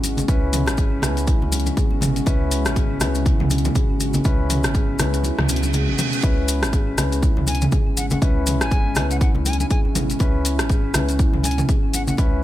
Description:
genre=afro house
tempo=121 BPM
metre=4/4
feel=swing 58% on 16ths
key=C# minor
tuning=A4 = 440 Hz
part: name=ethereal airy pad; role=sustained chords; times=0.0-12.4 s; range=C#3 to F#4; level=-30 LUFS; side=equal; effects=ensemble chorus, built-in reverb, sidechain pumping
part: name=marimba with soft mallets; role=arpeggios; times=0.0-12.3 s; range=C#4 to G#4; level=-28 LUFS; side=left 1 dB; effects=sidechain pumping, tape echo
part: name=felt-muted upright piano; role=stabs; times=0.0-12.4 s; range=C#4 to B4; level=-30 LUFS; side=left 3 dB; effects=sidechain pumping, tape echo
part: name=warm sub bass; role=bass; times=0.0-12.4 s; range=G#1 to C#2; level=-24 LUFS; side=equal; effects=sidechain pumping
part: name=house drum kit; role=drums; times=0.0-12.3 s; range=hi-hat, rim click, toms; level=-26 LUFS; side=equal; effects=none
part: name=congas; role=percussion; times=0.0-12.3 s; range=none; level=-28 LUFS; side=equal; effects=none
part: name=maracas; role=percussion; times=0.0-12.3 s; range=none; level=-30 LUFS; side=left 2 dB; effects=none
part: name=electronic kick drum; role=drums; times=0.3-12.3 s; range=none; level=-19 LUFS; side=equal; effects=none
part: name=reverse cymbal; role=sound effects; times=5.4-6.2 s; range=none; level=-29 LUFS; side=right 5 dB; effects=none
part: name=silver concert flute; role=melody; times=7.5-12.1 s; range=F#5 to G#5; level=-31 LUFS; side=left 1 dB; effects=tape echo
room=little or no reverb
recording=none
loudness=-17 LUFS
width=side -14 dB against mid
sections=0.0-12.4 A section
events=kick drops out 5.2-6.2; reverse cymbal 5.4-6.2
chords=0.0 C#m7

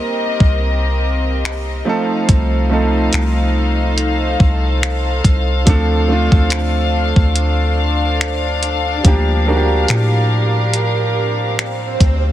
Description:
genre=contemporary R&B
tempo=71 BPM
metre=4/4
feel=swing 54% on 16ths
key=G minor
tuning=A4 = 443 Hz
part: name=warm concert grand piano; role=accompaniment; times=0.0-12.3 s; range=F3 to Bb4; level=-21 LUFS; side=right 2 dB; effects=none
part: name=warm studio string section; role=sustained chords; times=0.0-12.3 s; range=C4 to F5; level=-20 LUFS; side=left 2 dB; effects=none
part: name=soft 808-style bass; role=bass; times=0.4-12.3 s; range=C2 to A2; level=-17 LUFS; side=equal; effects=none
part: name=gated 80s digital drum machine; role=drums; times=0.4-12.2 s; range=finger snaps, hi-hat, kick drum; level=-14 LUFS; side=equal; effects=vintage 12-bit sampler grit, soft clipping on snare
room=little or no reverb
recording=dense, heavily limited modern master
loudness=-13 LUFS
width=side -13 dB against mid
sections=0.0-12.3 A section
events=none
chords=0.0 Cm7; 1.9 F7/C; 5.7 Dm7; 9.0 Gm7/D

